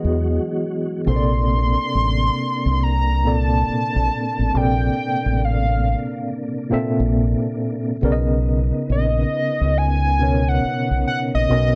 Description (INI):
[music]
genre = R&B, neo-soul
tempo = 69 BPM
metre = 4/4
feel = swing 63% on 16ths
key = unclear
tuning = A4 = 440 Hz
[part]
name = mellow tine electric piano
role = accompaniment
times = 0.0-11.8 s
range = A#2 to E5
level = -25 LUFS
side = equal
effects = medium tremolo
[part]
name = tonewheel organ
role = sustained chords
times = 0.0-11.8 s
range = B#2 to F#4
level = -33 LUFS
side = equal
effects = chorus vibrato, fast rotary speaker
[part]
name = deep dub fingered electric bass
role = bass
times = 0.0-11.8 s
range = A1 to E2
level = -22 LUFS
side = equal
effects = none
[part]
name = hollow square lead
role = melody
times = 1.1-11.8 s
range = D#5 to B#5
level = -25 LUFS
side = equal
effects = chorus, slapback echo
[sound]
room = little or no reverb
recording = none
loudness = -20 LUFS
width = mono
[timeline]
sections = 0.0-11.8 A section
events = none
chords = 0.0 Emaj9; 1.1 A#maj9; 8.0 Bmaj9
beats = 0.19 | 1.06 1.93 2.80 3.67 | 4.54 5.41 6.28 7.15 | 8.02 8.89 9.76 10.62 | 11.49